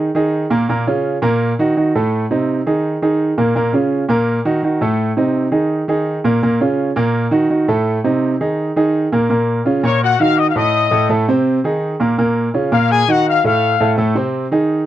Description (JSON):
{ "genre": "latin", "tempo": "167 BPM", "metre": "4/4", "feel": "straight", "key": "Bb minor", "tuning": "A4 = 440 Hz", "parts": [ { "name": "warm grand piano", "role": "accompaniment", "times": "0.0-14.8 s", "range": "A2 to C5", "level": "-14 LUFS", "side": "right 2 dB", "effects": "none" }, { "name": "clear trumpet section", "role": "melody", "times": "9.8-14.0 s", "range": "Gb4 to Eb6", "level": "-14 LUFS", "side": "left 7 dB", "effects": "none" } ], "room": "light reverb", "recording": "dry, close 1970s-style studio recording", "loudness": "-14 LUFS", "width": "side -13 dB against mid", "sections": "0.0-9.3 A section; 9.3-14.9 B section", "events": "none", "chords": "0.0 Ab5; 0.7 Bbm; 1.4 Ebm; 2.1 Adim; 2.8 Ab5; 3.5 Bbm; 4.3 Ebm; 5.0 Adim; 5.7 Ab5; 6.4 Bbm; 7.1 Ebm; 7.9 Adim; 8.6 Ab5; 9.3 Bbm; 10.0 Ebm; 10.7 Adim; 11.5 Ab; 12.2 Bbm; 12.9 Ebm; 13.6 F; 14.3 Ab" }